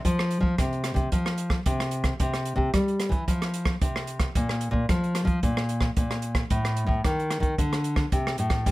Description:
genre	samba and choro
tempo	112 BPM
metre	4/4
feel	straight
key	F major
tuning	A4 = 440 Hz
part	nylon-string guitar	bass	0.0-8.7 s	G2 to G3	-26 LUFS	left 1 dB	none
part	open jazz drum kit	drums	0.1-8.7 s	hi-hat, kick drum, rim click	-26 LUFS	right 1 dB	none
room	light reverb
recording	none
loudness	-23 LUFS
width	side -18 dB against mid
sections	0.1-8.7 A section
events	none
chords	none

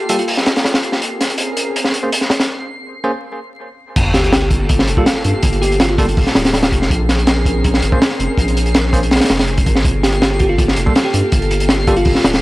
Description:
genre	drum and bass, jungle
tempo	163 BPM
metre	4/4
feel	straight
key	unclear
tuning	A4 = 439 Hz
part	airy breathy pad	sustained chords	0.0-12.4 s	Bb3 to Bb4	-23 LUFS	equal	chorus
part	twinkling granular texture	texture	0.0-12.4 s	C7	-29 LUFS	equal	built-in reverb
part	bell-like FM electric piano	melody	0.1-0.6, 4.1-6.0, 10.0-12.3 s	F4 to G4	-21 LUFS	equal	chorus, cassette tape, dub echo
part	bell-like tine electric piano	stabs	0.1-11.9 s	G3 to C5	-23 LUFS	right 1 dB	dub echo
part	crunchy breakbeat drum kit	drums	0.1-12.4 s	crash cymbal, hi-hat, kick drum, snare drum	-14 LUFS	equal	high-pass filter on kick, high-pass filter on hats, high-pass filter on cymbals, high-pass filter on snare, high-pass filter on room
part	saturated sub bass	bass	4.0-12.4 s	D1 to G2	-18 LUFS	equal	none
part	sub drop	sound effects	4.0-5.4 s	none	-24 LUFS	equal	none
room	light reverb, studio reverb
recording	dry, gritty hardware recording, transformer saturation, vinyl crackle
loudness	-12 LUFS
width	side -19 dB against mid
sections	0.0-4.0 A section; 4.0-12.4 B section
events	filter sweep on tine electric piano 0.0-4.0; break 2.5-4.0; drop 4.0-12.4; impact 4.0-5.4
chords	0.0 Gm9; 1.0 Bbm9; 4.0 Gm9; 6.9 Bbm9; 9.8 Gm9

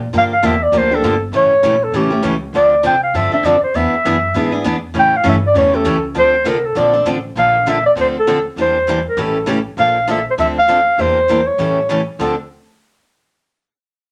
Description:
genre	acoustic string swing (jazz manouche)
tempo	199 BPM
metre	4/4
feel	swing 58% on 8ths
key	D minor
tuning	A4 = 440 Hz
part	upright bass	bass	0.0-12.4 s	G1 to Bb2	-27 LUFS	equal	none
part	picked steel-string acoustic guitar	accompaniment	0.1-12.3 s	C#3 to A4	-22 LUFS	equal	none
part	picked steel-string acoustic guitar	accompaniment	0.1-12.3 s	D3 to B4	-28 LUFS	equal	none
part	breathy clarinet	melody	0.2-12.4 s	G4 to G5	-16 LUFS	equal	none
room	moderate club reverb, RT60 0.6 s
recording	none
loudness	-15 LUFS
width	mono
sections	0.0-7.4 A section; 7.4-12.2 B section; 12.2-13.4 C section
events	none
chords	0.1 Gm9; 1.3 A7; 2.5 Dm7; 3.7 E7; 4.9 A7; 6.2 Dm7; 7.4 Bbmaj7; 8.0 Dm7; 8.6 Em7b5; 9.2 A7; 9.8 Bbmaj7; 10.4 Dm7; 11.0 Em7b5; 11.6 A7; 12.2 Dm7

